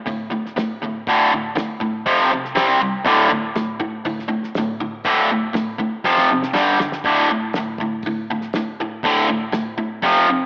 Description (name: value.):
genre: garage rock duo or trio.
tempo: 120 BPM.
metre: 4/4.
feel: straight.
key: unclear.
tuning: A4 = 440 Hz.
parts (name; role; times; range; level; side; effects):
biting overdriven guitar; riff; 0.0-10.5 s; D2 to C4; -20 LUFS; equal; cassette tape.
cloth-damped thuddy drum kit; drums; 0.1-10.2 s; hi-hat, kick drum, snare drum; -32 LUFS; equal; cassette tape.
room: moderate spring reverb, RT60 1.9 s, small room ambience.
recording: home recording on cassette, AM radio sound.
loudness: -20 LUFS.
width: mono.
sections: 0.0-10.5 A section.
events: drum fill 6.1-7.1.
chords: 0.0 D5; 2.1 F5; 2.6 C5; 3.1 D5; 6.1 F5; 6.6 G5; 7.1 D5.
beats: 0.08 0.58 | 1.07 1.57 2.07 2.57 | 3.07 3.57 4.07 4.57 | 5.07 5.56 6.06 6.56 | 7.06 7.55 8.05 8.55 | 9.05 9.54 10.04.